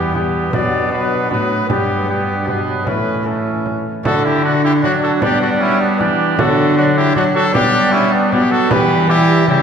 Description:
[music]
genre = classical, renaissance-style consort dance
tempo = 155 BPM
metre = 3/4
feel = straight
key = unclear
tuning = A4 = 443 Hz
[part]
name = clear cornet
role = melody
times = 0.0-9.6 s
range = D4 to D5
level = -20 LUFS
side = left 3 dB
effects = none
[part]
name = mellow cor anglais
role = second line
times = 0.0-9.6 s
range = B3 to G4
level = -19 LUFS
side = right 4 dB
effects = none
[part]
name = lute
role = accompaniment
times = 0.0-9.6 s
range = E2 to G4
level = -23 LUFS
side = left 2 dB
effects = none
[part]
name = mellow trombone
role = accompaniment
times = 0.0-9.6 s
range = E3 to D4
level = -21 LUFS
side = equal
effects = none
[part]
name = rich cello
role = bass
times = 0.0-9.6 s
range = E2 to G3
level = -19 LUFS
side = equal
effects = none
[part]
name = frame drum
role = percussion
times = 0.1-9.6 s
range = none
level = -25 LUFS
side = right 2 dB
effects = none
[sound]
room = wet church reverb, RT60 2.9 s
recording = recorded in a church or concert hall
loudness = -13 LUFS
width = side -7 dB against mid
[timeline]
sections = 0.0-4.1 A section; 4.1-9.6 A section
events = none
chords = 0.0 Em; 0.5 Bm; 1.7 G; 2.9 A; 4.1 D; 5.2 G; 6.4 D; 7.5 G; 8.7 Em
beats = 0.15 | 0.54 0.93 1.31 | 1.70 2.09 2.48 | 2.87 3.27 3.66 | 4.05 4.45 4.83 | 5.22 5.61 6.00 | 6.39 6.77 7.16 | 7.55 7.93 8.32 | 8.71 9.10 9.48

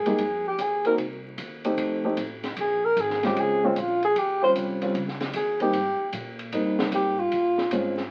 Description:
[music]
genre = jazz, small-group swing and bop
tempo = 152 BPM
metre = 4/4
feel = swing 66% on 8ths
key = unclear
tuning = A4 = 440 Hz
[part]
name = breathy alto saxophone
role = melody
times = 0.0-7.7 s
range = C4 to C5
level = -26 LUFS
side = equal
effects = none
[part]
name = upright bass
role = bass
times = 0.0-8.1 s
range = Ab1 to Bb2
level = -44 LUFS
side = equal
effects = none
[part]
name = dark grand piano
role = accompaniment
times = 0.1-8.0 s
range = G3 to G4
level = -29 LUFS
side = equal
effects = none
[part]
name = open jazz drum kit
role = drums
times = 0.1-8.0 s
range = hi-hat, kick drum, ride cymbal, snare drum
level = -37 LUFS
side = equal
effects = none
[sound]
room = moderate large studio reverb, RT60 0.9 s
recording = very old 78 rpm record, vinyl crackle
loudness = -25 LUFS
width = mono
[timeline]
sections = 0.0-8.1 A section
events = none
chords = 0.0 Fm11; 1.0 Cm; 1.8 F7; 2.6 Bbm9; 4.2 Eb13; 5.7 Abmaj9; 7.3 Bbm7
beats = 0.19 0.59 | 0.98 1.38 1.78 2.17 | 2.57 2.96 3.36 3.76 | 4.15 4.55 4.94 5.34 | 5.74 6.13 6.53 6.92 | 7.32 7.71

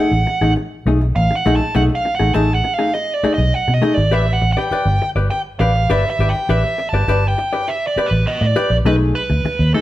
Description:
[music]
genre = funk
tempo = 101 BPM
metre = 4/4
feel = straight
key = unclear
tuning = A4 = 440 Hz
[part]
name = nasal lead guitar with a parked wah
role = melody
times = 0.0-9.8 s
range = A4 to A5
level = -20 LUFS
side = right 2 dB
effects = overdrive
[part]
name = hollow-body jazz guitar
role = accompaniment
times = 0.0-9.8 s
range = A3 to D5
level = -20 LUFS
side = left 3 dB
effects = none
[part]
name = vintage muted fingered electric bass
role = bass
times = 0.1-9.7 s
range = G1 to B2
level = -17 LUFS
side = equal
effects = none
[sound]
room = moderate stone room reverb, RT60 1.1 s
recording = band playing live in one room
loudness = -14 LUFS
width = side -15 dB against mid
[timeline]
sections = 0.0-8.9 A section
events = lead electric guitar solo 0.0-8.9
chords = 0.0 B6; 4.1 A9sus4; 8.9 B6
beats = 0.56 1.16 | 1.75 2.34 2.94 3.53 | 4.12 4.71 5.31 5.90 | 6.49 7.08 7.68 8.27 | 8.86 9.45

